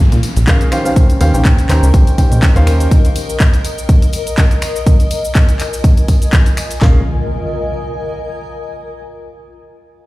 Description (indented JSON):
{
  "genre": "piano house",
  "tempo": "123 BPM",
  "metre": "4/4",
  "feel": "swing 55% on 16ths",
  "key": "Bb dorian",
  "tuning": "A4 = 440 Hz",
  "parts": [
    { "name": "downlifter and impact", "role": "sound effects", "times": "0.0-2.9, 6.8-8.8 s", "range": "none", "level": "-24 LUFS", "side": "equal", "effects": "none" },
    { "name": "granular cloud pad", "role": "texture", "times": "1.2-8.7 s", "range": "F4 to Ab5", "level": "-24 LUFS", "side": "left 2 dB", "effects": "built-in reverb, sidechain pumping" },
    { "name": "plucky analog bass", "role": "bass", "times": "0.1-2.9, 6.8-7.0 s", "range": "Bb1 to Bb2", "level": "-12 LUFS", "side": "equal", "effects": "sidechain pumping" },
    { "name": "house drum kit", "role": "drums", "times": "0.1-6.8 s", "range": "cabasa, finger snaps, handclaps, hi-hat", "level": "-22 LUFS", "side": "equal", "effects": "overdrive" },
    { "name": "tambourine", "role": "percussion", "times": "0.1-6.8 s", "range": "none", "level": "-33 LUFS", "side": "left 3 dB", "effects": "none" },
    { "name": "warm grand piano", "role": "riff", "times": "0.5-2.9, 6.8-7.0 s", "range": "Eb3 to Bb5", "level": "-19 LUFS", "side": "equal", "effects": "sidechain pumping, ping-pong delay" },
    { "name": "house drum kit", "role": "drums", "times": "0.5-6.9 s", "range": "handclaps, kick drum, snare drum", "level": "-10 LUFS", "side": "equal", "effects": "overdrive" }
  ],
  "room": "digital ambience",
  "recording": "played on a big sound system in a bare room, large studio reverb",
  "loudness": "-10 LUFS",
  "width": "side -18 dB against mid",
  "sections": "0.0-6.8 A section; 6.8-8.8 B section",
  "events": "none",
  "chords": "0.0 Bbm7; 0.7 Eb13; 2.9 Bb7sus4; 4.6 Fm7; 6.8 Bb7(no3)"
}